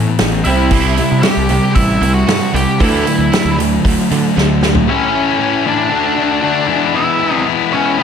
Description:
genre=quiet-loud alternative rock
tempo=115 BPM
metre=4/4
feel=straight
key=unclear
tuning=A4 = 440 Hz
part: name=fingerpicked old ladder-braced acoustic guitar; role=arpeggios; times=0.0-4.9 s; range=C3 to C4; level=-23 LUFS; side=right 5 dB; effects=none
part: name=thick fuzz guitar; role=riff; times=0.0-8.0 s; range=G2 to F#4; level=-16 LUFS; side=left 9 dB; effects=distortion
part: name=fuzz fingered electric bass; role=bass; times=0.0-4.8 s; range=A1 to D3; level=-18 LUFS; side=right 1 dB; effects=overdrive
part: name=loose indie drum kit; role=drums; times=0.2-4.9 s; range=hi-hat, kick drum, snare drum, toms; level=-18 LUFS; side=equal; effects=none
part: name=octave-fuzz lead guitar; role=melody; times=0.4-8.0 s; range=C#4 to G5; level=-17 LUFS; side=right 1 dB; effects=distortion, slapback echo
part: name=sludgy distorted guitar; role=riff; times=0.7-4.9 s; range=C3 to D4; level=-18 LUFS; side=right 11 dB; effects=overdrive, slapback echo
room=moderate recital hall reverb, RT60 1.4 s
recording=big arena sound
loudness=-11 LUFS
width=side -7 dB against mid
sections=0.0-4.9 A section; 4.9-8.0 B section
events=drum fill 4.4-4.9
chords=0.5 C; 2.8 Dadd9; 4.9 A; 5.9 D; 6.7 E

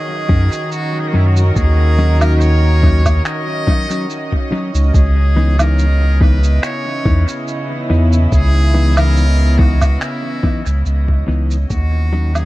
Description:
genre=ambient dub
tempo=71 BPM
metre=4/4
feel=swing 54% on 16ths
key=C# dorian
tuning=A4 = 440 Hz
part: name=trumpet with metal mute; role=melody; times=0.0-12.5 s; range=E4 to D#5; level=-24 LUFS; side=left 2 dB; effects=dub echo
part: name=warm studio string section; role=sustained chords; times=0.0-12.5 s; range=C#3 to D#5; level=-22 LUFS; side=right 1 dB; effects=none
part: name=clean electric guitar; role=stabs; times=0.3-12.5 s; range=E3 to D#4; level=-23 LUFS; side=left 2 dB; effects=dub echo
part: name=warm sub bass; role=bass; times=0.3-12.5 s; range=C#2 to F#2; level=-12 LUFS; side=equal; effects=none
part: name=electronic kick drum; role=drums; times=0.3-11.9 s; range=none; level=-15 LUFS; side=equal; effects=overdrive
part: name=electronic cabasa, woodblock and finger snaps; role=drums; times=0.5-12.5 s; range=none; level=-26 LUFS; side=right 1 dB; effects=overdrive, dub echo
room=little or no reverb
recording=dark, warm production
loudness=-12 LUFS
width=side -18 dB against mid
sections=0.0-12.5 A section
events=fade-out 9.4-12.5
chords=0.0 D#m7; 4.9 C#m9; 11.7 D#m7

